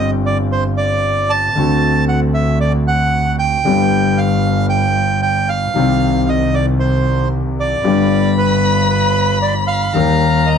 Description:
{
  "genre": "tango",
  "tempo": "115 BPM",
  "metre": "4/4",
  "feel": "rubato",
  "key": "unclear",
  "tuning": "A4 = 440 Hz",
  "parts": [
    { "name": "bandoneon", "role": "melody", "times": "0.0-10.6 s", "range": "B4 to A5", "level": "-18 LUFS", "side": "right 4 dB", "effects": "none" },
    { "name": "bright concert grand piano", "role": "accompaniment", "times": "0.0-10.6 s", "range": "G1 to G4", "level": "-17 LUFS", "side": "left 4 dB", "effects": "none" },
    { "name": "clear double bass", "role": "bass", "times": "0.0-10.6 s", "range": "G1 to Eb2", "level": "-18 LUFS", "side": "right 2 dB", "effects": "none" },
    { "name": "warm violin", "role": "second line", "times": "7.8-10.6 s", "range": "Bb5 to B5", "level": "-19 LUFS", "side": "left 4 dB", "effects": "none" }
  ],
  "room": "light reverb",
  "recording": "nothing above 10.5 kHz",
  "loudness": "-13 LUFS",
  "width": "side -7 dB against mid",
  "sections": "0.0-10.6 A section",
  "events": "none",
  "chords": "0.0 Gsus4; 1.6 D7; 3.7 G; 5.7 Cm; 7.8 G; 9.9 Eb",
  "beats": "0.00 0.52 1.04 | 1.57 2.09 2.61 3.13 | 3.65 4.18 4.70 5.22 | 5.75 6.27 6.80 7.32 | 7.85 8.37 8.90 9.42 | 9.95 10.47"
}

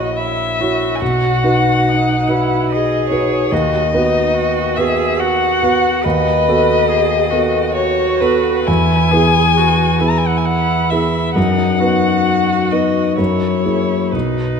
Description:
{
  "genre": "classical, slow romantic movement for piano trio",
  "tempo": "61-73 BPM",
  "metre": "3/4",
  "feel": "rubato",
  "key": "B major",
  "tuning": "A4 = 440 Hz",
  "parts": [
    { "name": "muted violin", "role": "melody", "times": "0.0-14.6 s", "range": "B4 to A#5", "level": "-18 LUFS", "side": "left 6 dB", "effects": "none" },
    { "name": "muted cello", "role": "second line", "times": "0.0-14.6 s", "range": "D#4 to B4", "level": "-20 LUFS", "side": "right 8 dB", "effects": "none" },
    { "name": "warm concert grand piano", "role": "accompaniment", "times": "0.0-14.6 s", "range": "A#1 to C#5", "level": "-16 LUFS", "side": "equal", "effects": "none" }
  ],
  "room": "wet scoring stage reverb, RT60 2.0 s",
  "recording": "none",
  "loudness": "-13 LUFS",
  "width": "side -6 dB against mid",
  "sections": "0.0-14.6 A section",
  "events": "none",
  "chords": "0.0 F#7/A#; 1.0 B; 3.5 B/D#; 6.0 B7/D#; 8.7 E; 11.4 B/F#; 13.2 F#9",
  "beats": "0.17 | 1.01 1.86 2.69 | 3.51 4.34 5.19 | 6.05 6.89 7.75 | 8.68 9.56 10.46 | 11.37 12.26 13.18 | 14.13"
}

